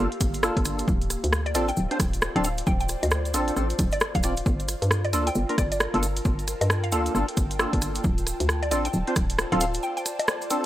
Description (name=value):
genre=UK garage, two-step garage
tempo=134 BPM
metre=4/4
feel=swing 61% on 16ths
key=G minor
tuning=A4 = 440 Hz
part: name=percussive organ stab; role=stabs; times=0.0-10.7 s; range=Bb3 to D5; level=-28 LUFS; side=equal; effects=ensemble chorus, tape echo
part: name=hollow knocking FM bass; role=bass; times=0.0-9.8 s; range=D1 to G2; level=-27 LUFS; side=equal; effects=none
part: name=ethereal airy pad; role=texture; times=0.0-10.7 s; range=Bb3 to A5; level=-34 LUFS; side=left 1 dB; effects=ensemble chorus, built-in reverb, sidechain pumping
part: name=punchy analog drum machine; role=drums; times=0.1-10.6 s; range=bongos, hi-hat, rim click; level=-27 LUFS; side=equal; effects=studio reverb
part: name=electronic kick drum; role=drums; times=0.2-9.3 s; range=none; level=-26 LUFS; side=equal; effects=studio reverb
part: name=cabasa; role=percussion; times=0.2-10.6 s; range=none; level=-36 LUFS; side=right 3 dB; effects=none
part: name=mallet-like synth pluck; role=melody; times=1.5-10.0 s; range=D5 to G5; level=-32 LUFS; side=right 1 dB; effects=analog chorus, tape echo
room=digital ambience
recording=dry, gritty hardware recording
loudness=-22 LUFS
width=side -14 dB against mid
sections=0.0-10.7 A section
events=break 9.8-10.7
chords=0.0 Gm9; 0.9 Dm7; 4.5 Gm9; 8.0 Dm7